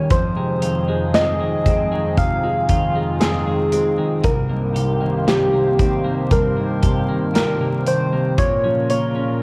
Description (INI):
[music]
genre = pop ballad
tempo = 58 BPM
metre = 4/4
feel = straight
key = F minor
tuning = A4 = 439 Hz
[part]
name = soft struck synth lead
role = melody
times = 0.0-9.4 s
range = G4 to F5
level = -24 LUFS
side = equal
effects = chorus
[part]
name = clear grand piano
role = accompaniment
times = 0.0-9.4 s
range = C2 to G4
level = -25 LUFS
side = equal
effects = none
[part]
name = warm analog pad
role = sustained chords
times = 0.0-9.4 s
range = F2 to G5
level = -28 LUFS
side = equal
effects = chorus
[part]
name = twelve-string electric guitar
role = arpeggios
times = 0.0-9.4 s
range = F2 to G4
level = -29 LUFS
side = equal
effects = analog delay
[part]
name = modern studio drum kit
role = drums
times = 0.1-9.1 s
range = hi-hat, kick drum, snare drum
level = -23 LUFS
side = equal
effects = none
[sound]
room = light reverb, small room ambience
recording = vinyl crackle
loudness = -19 LUFS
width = mono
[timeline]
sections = 0.0-9.4 A section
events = none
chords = 0.1 Fm7; 4.2 Cm7; 8.4 Bbmadd9